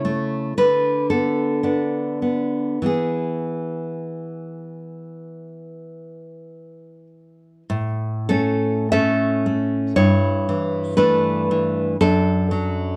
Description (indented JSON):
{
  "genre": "romantic piece for solo classical guitar",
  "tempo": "47-60 BPM",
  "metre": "4/4",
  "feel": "rubato",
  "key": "A major",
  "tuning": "A4 = 438 Hz",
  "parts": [
    { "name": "nylon-string guitar", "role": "solo", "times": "0.0-13.0 s", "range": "F#2 to E5", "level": "-22 LUFS", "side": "equal", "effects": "none" }
  ],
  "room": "light reverb",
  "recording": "dark, warm production",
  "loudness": "-21 LUFS",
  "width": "mono",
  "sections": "0.0-7.7 A section; 7.7-13.0 A section",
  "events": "none",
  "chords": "0.0 A/C#; 0.6 Bm/D; 2.8 E; 7.7 A; 10.0 A7/G; 12.0 D/F#",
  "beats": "0.57 1.63 | 2.84 4.09 5.32 6.50 | 7.68 8.89 9.96 10.98 | 11.99"
}